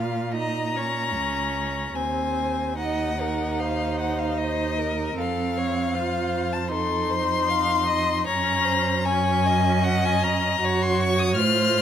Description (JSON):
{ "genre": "classical, slow romantic movement for string quartet", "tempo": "77 BPM", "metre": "4/4", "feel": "uneven beats, rubato", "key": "unclear", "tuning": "A4 = 441 Hz", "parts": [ { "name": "rich violin", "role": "melody", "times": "0.0-11.8 s", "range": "Eb5 to F6", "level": "-25 LUFS", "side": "left 7 dB", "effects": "none" }, { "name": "rich viola", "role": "accompaniment", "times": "0.0-11.8 s", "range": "C4 to Gb4", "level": "-29 LUFS", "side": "right 4 dB", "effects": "none" }, { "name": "rich cello", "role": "bass", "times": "0.0-11.8 s", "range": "Db2 to Bb2", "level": "-27 LUFS", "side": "right 4 dB", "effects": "none" }, { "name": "rich violin", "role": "second line", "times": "0.3-11.8 s", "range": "A4 to F5", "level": "-30 LUFS", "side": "equal", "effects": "none" } ], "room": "moderate recital hall reverb, RT60 1.7 s", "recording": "close, detailed microphones", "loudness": "-21 LUFS", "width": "side -9 dB against mid", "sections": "0.0-11.8 A section", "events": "none", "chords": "0.0 Bbm; 2.0 Cdim/Eb; 5.2 F5; 8.3 Gb", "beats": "0.33 1.16 | 1.97 2.79 3.60 4.38 | 5.17 5.93 6.70 7.48 | 8.26 9.04 9.84 10.60 | 11.37" }